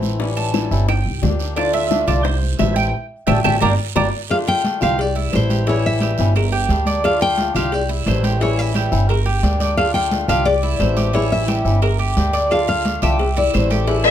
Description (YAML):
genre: latin, Cuban son and guajira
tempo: 175 BPM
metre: 4/4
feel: straight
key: D minor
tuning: A4 = 439 Hz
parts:
  - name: fingerpicked swing-style acoustic guitar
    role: accompaniment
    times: 0.0-14.1 s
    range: D3 to G4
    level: -24 LUFS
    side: left 5 dB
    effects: none
  - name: upright bass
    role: bass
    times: 0.0-14.1 s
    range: G1 to D2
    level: -20 LUFS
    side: right 1 dB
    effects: none
  - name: bongos and cowbell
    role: percussion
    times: 0.0-14.0 s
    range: none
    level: -26 LUFS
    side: left 5 dB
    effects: none
  - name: congas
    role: percussion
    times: 0.0-14.1 s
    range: none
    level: -26 LUFS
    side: equal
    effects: none
  - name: guiro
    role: percussion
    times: 0.0-14.1 s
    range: none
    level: -33 LUFS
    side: right 9 dB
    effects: none
  - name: Cuban tres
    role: arpeggios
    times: 0.4-14.1 s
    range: E4 to A5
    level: -22 LUFS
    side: right 3 dB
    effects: slapback echo
  - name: claves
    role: percussion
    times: 0.5-13.7 s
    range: none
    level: -30 LUFS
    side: right 12 dB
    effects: none
  - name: nylon-string guitar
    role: melody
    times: 4.3-14.1 s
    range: A4 to G5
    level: -21 LUFS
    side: left 2 dB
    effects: none
  - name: warm studio violin section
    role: second line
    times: 14.1 s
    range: E5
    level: -10 LUFS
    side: left 4 dB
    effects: none
room: light reverb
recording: none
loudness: -15 LUFS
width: side -10 dB against mid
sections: 0.0-4.3 A section; 4.3-14.1 B section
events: Cuban tres solo 0.0-4.3; band accent 2.9-4.3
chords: 0.2 A7; 0.9 Gm; 1.6 Dm; 2.3 C6; 2.9 A7; 3.6 Gm; 4.3 Dm; 5.0 C6; 5.7 A7; 6.4 Gm; 7.0 Dm; 7.7 C6; 8.4 A7; 9.1 Gm; 9.8 Dm; 10.5 C6; 11.1 A7; 11.8 Gm; 12.5 Dm; 13.2 C6